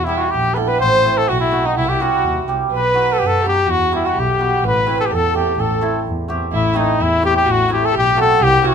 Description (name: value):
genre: klezmer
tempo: 126 BPM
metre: 2/4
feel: straight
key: A dorian sharp4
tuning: A4 = 439 Hz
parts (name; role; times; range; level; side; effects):
- warm cornet; melody; 0.0-8.7 s; D#4 to C5; -17 LUFS; left 5 dB; none
- dark violin; second line; 0.0-8.7 s; D#4 to C5; -21 LUFS; right 8 dB; none
- hammered dulcimer; accompaniment; 0.1-8.7 s; F#3 to G4; -22 LUFS; right 4 dB; none
- dark double bass; bass; 0.3-8.7 s; A1 to F#2; -21 LUFS; equal; none
room: light reverb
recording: minimal, uncompressed stereo recording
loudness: -14 LUFS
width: side -7 dB against mid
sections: 0.0-6.5 A section; 6.5-8.7 B section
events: speeding up 0.0-8.7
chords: 0.0 Em; 0.8 Am; 1.8 C; 2.7 B; 3.7 Em; 4.6 Am